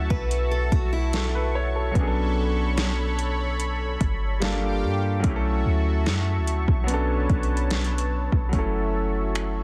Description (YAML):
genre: contemporary R&B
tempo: 73 BPM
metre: 4/4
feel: straight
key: B minor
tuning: A4 = 440 Hz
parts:
  - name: warm concert grand piano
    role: accompaniment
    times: 0.0-9.6 s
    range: F#3 to C#5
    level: -31 LUFS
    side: equal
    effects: none
  - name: warm analog pad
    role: sustained chords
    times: 0.0-9.6 s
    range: F#4 to D6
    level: -34 LUFS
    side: equal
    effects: chorus
  - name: clean 808-style bass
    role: bass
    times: 0.0-9.6 s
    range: F#1 to G2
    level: -28 LUFS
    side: equal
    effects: none
  - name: picked old ladder-braced acoustic guitar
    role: arpeggios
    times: 0.1-1.9 s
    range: E4 to B4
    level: -34 LUFS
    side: equal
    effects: tape echo
  - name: smooth R&B drum kit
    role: drums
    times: 0.1-9.5 s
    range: finger snaps, hi-hat, kick drum, snare drum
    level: -28 LUFS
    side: equal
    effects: overdrive, vintage 12-bit sampler grit
room: digital ambience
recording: dense, heavily limited modern master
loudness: -24 LUFS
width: mono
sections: 0.0-8.5 A section; 8.5-9.6 B section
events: none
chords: 0.0 F#m7/B; 2.0 Bm9; 4.4 Gm7; 5.2 F#m7/B; 6.9 Bm9; 8.5 F#m7